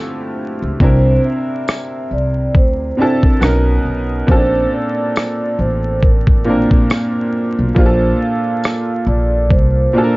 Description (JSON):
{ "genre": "lo-fi hip hop", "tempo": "69 BPM", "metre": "4/4", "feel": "swing 58% on 16ths", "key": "unclear", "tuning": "A4 = 440 Hz", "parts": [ { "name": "bright upright piano", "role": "accompaniment", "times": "0.0-10.2 s", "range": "Bb2 to Bb4", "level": "-17 LUFS", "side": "equal", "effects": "cassette tape, low-pass filter" }, { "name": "upright bass", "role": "bass", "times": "0.6-9.9 s", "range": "A1 to D2", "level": "-16 LUFS", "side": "equal", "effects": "none" }, { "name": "vibraphone with soft mallets", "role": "melody", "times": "0.8-10.2 s", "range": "Bb4 to F5", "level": "-21 LUFS", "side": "right 2 dB", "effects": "low-pass filter" }, { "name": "dusty soul sampler-style drum kit", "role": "drums", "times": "0.8-9.7 s", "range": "kick drum, rim click", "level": "-12 LUFS", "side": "equal", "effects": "vintage 12-bit sampler grit" }, { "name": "tambourine", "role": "percussion", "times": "1.7-8.9 s", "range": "none", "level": "-36 LUFS", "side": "left 3 dB", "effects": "none" } ], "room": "light reverb", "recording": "vinyl crackle, nothing above 7.6 kHz", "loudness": "-13 LUFS", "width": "side -22 dB against mid", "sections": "0.0-10.2 A section", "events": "break 0.0-10.2", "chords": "0.0 Dm11; 0.8 C9; 3.4 Bmaj9; 4.3 Bbmaj9", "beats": "| 0.81 1.67 2.54 3.41 | 4.28 5.15 6.02 6.89 | 7.76 8.63 9.50" }